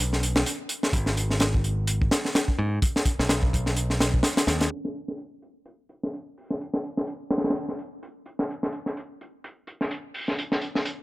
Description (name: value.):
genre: breakbeat, breaks.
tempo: 127 BPM.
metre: 4/4.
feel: swing 57% on 16ths.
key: G# minor.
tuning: A4 = 437 Hz.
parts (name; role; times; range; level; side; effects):
modern bright picked electric bass; bass; 0.0-4.7 s; G#1 to G#2; -26 LUFS; equal; none.
crunchy breakbeat drum kit; drums; 0.1-11.0 s; hi-hat, kick drum, snare drum; -25 LUFS; equal; low-pass filter on kick, low-pass filter on hats, low-pass filter on snare, low-pass filter on room.
room: little or no reverb.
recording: low-pass filter.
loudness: -24 LUFS.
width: side -19 dB against mid.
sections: 0.0-4.7 A section; 4.7-11.0 B section.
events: filter sweep 4.7-11.0.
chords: none.